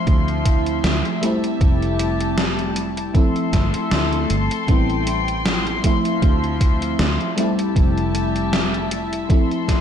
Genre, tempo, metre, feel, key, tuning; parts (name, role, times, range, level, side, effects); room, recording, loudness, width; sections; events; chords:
vaporwave; 78 BPM; 4/4; swing 55% on 16ths; A4 = 439 Hz
FM electric piano with soft pad layer; accompaniment; 0.0-9.8 s; F3 to E4; -22 LUFS; left 1 dB; lush chorus, analog delay
warm studio string section; sustained chords; 0.0-9.8 s; F3 to C6; -26 LUFS; left 3 dB
fingered electric bass; bass; 0.1-9.3 s; F1 to D2; -23 LUFS; right 1 dB
electronic kick drum; drums; 0.1-9.8 s; -16 LUFS; equal; overdrive, vintage 12-bit sampler grit, studio reverb
gated 80s digital drum machine; drums; 0.1-9.8 s; hi-hat, snare drum; -24 LUFS; equal; gated reverb, gated reverb snare, vintage 12-bit sampler grit, studio reverb
light reverb; -17 LUFS; side -8 dB against mid
0.0-9.8 A section
0.0 Dm9; 1.2 Fmaj9; 3.1 G13sus4; 4.7 Am7; 5.8 Dm9; 7.4 Fmaj9; 9.3 G9sus4 (rootless)